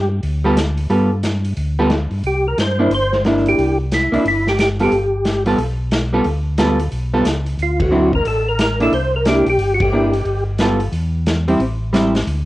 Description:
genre	soul jazz organ trio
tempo	180 BPM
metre	4/4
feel	swing 63% on 8ths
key	G mixolydian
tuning	A4 = 440 Hz
part	percussive tonewheel organ	melody	0.0-0.1, 2.3-5.4, 7.6-10.4 s	E4 to C5	-18 LUFS	equal	slow rotary speaker, chorus vibrato
part	mellow tonewheel organ	bass	0.0-12.5 s	G1 to G2	-20 LUFS	equal	overdrive, chorus vibrato, slow rotary speaker
part	vintage drum kit	drums	0.2-12.4 s	hi-hat, kick drum, ride cymbal, snare drum	-23 LUFS	equal	cassette tape
part	vintage hollow-body jazz guitar	accompaniment	0.4-12.1 s	D3 to A4	-17 LUFS	right 1 dB	none
room	light reverb, small room ambience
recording	home recording on cassette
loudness	-15 LUFS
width	side -16 dB against mid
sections	0.0-12.5 A section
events	band accent 7.8, 9.8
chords	0.0 G9; 2.2 C9; 4.9 G9; 7.6 D9; 8.9 C9; 10.3 G9; 10.9 Em; 11.6 Am7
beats	0.24 0.57 | 0.91 1.24 1.58 1.91 | 2.24 2.58 2.91 3.25 | 3.58 3.91 4.25 4.58 | 4.92 5.25 5.58 5.92 | 6.25 6.58 6.92 7.25 | 7.59 7.92 8.26 8.59 | 8.93 9.26 9.59 9.93 | 10.26 10.60 10.93 11.27 | 11.60 11.93 12.27

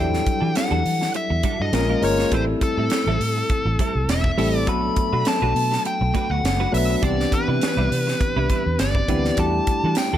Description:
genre	polished 1980s jazz-funk pop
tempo	102 BPM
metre	4/4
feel	swing 54% on 16ths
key	E minor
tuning	A4 = 439 Hz
part	dark smooth lead guitar	melody	0.0-10.2 s	A4 to B5	-25 LUFS	left 1 dB	overdrive
part	barky tine electric piano	accompaniment	0.0-10.2 s	E3 to E5	-24 LUFS	left 2 dB	overdrive, wide subtle chorus
part	semi-hollow electric guitar	riff	0.0-10.2 s	G3 to C5	-30 LUFS	right 7 dB	ensemble chorus
part	vintage muted fingered electric bass	bass	0.0-10.2 s	E1 to E3	-23 LUFS	equal	none
part	crisp fusion drum kit	drums	0.1-10.1 s	hi-hat, kick drum, snare drum	-25 LUFS	right 1 dB	gated reverb
part	tambourine	percussion	10.0-10.1 s	none	-35 LUFS	left 11 dB	none
room	light reverb, small room ambience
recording	none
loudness	-18 LUFS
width	side -11 dB against mid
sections	0.0-10.2 A section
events	none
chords	0.0 Em11; 1.7 A#m7; 2.3 Am7; 4.7 Bm7; 7.0 Cmaj9; 9.4 Em11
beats	0.56 1.15 1.74 | 2.32 2.91 3.50 4.09 | 4.67 5.26 5.85 6.44 | 7.03 7.62 8.20 8.79 | 9.38 9.97

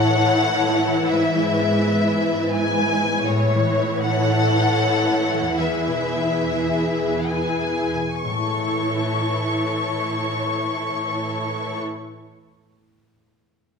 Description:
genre	cinematic, emotional film score for orchestra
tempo	62-84 BPM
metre	3/4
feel	rubato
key	A major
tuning	A4 = 440 Hz
part	warm symphonic violin section	melody	0.0-11.8 s	C#5 to C#6	-24 LUFS	left 3 dB	none
part	warm symphonic violin section	second line	0.0-11.8 s	G#4 to C#5	-28 LUFS	left 3 dB	none
part	warm symphonic viola section	accompaniment	0.0-11.8 s	E3 to E4	-26 LUFS	right 1 dB	none
part	concert harp	arpeggios	0.0-12.6 s	E2 to E5	-26 LUFS	left 3 dB	none
part	warm symphonic cello section	bass	0.0-11.8 s	E2 to A2	-26 LUFS	right 3 dB	none
room	wet recital hall reverb, RT60 1.4 s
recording	minimal, uncompressed stereo recording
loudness	-19 LUFS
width	side -5 dB against mid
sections	0.0-8.2 A section; 8.2-11.0 B section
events	slowing down 2.2-8.2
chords	0.0 A; 1.1 E/G#; 3.3 A; 5.6 E; 8.2 A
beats	0.38 | 1.11 1.83 2.55 | 3.29 4.05 4.80 | 5.58 6.41 7.29 | 8.23 9.15 10.09

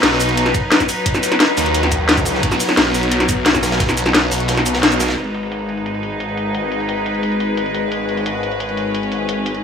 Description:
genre	dark technical drum and bass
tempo	175 BPM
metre	4/4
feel	straight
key	G# minor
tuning	A4 = 438 Hz
part	rich chamber string section	sustained chords	0.0-9.6 s	F#3 to B4	-20 LUFS	left 1 dB	sidechain pumping
part	phased detuned saw bass	bass	0.0-9.6 s	G#1 to D#2	-21 LUFS	equal	phaser, tube saturation, sidechain pumping
part	crunchy breakbeat drum kit	drums	0.0-5.2 s	hi-hat, ride cymbal, snare drum	-26 LUFS	equal	none
part	drum and bass drum kit	drums	0.0-9.6 s	crash cymbal, hi-hat, shaker, snare drum	-17 LUFS	left 1 dB	low-pass filter on hats, low-pass filter on cymbals, low-pass filter on snare, low-pass filter on perc, low-pass filter on room
part	electronic kick drum	drums	0.5-3.9 s	none	-23 LUFS	equal	none
room	light reverb, small room ambience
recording	none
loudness	-15 LUFS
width	side -7 dB against mid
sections	0.0-5.2 A section; 5.2-9.6 B section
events	drop 0.0-5.2; kick drops out 4.5-5.2; band accent 4.8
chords	0.0 B; 5.2 G#m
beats	0.03 0.37 0.72 | 1.06 1.40 1.75 2.09 | 2.43 2.77 3.12 3.46 | 3.80 4.14 4.49 4.83 | 5.17 5.52 5.86 6.20 | 6.54 6.89 7.23 7.57 | 7.92 8.26 8.60 8.95 | 9.29 9.63

